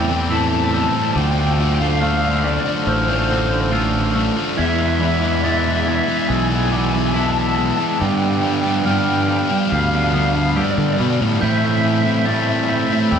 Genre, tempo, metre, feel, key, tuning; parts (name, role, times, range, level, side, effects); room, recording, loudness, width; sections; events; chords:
post-rock; 70 BPM; 4/4; straight; A minor; A4 = 440 Hz
raw garage guitar; melody; 0.0-13.2 s; C5 to A5; -23 LUFS; left 1 dB; overdrive, tremolo
hand-pumped harmonium; sustained chords; 0.0-13.2 s; G#3 to G5; -29 LUFS; left 1 dB
glockenspiel with rubber mallets; arpeggios; 0.0-13.2 s; D6 to A6; -27 LUFS; right 1 dB
twangy electric guitar; arpeggios; 0.0-13.2 s; E2 to G4; -29 LUFS; left 3 dB
distorted electric guitar; riff; 0.0-13.1 s; G2 to F4; -23 LUFS; right 4 dB; distortion
sludgy distorted guitar; riff; 0.0-13.2 s; G2 to F4; -22 LUFS; left 4 dB; overdrive
fuzz fingered electric bass; bass; 0.0-13.2 s; A1 to D3; -21 LUFS; equal; overdrive
wet studio reverb, RT60 0.7 s; band playing live in one room; -16 LUFS; side -7 dB against mid
0.0-13.2 A section
0.0 Am7; 1.2 Dm7; 4.6 E7; 8.0 G7; 11.4 Am7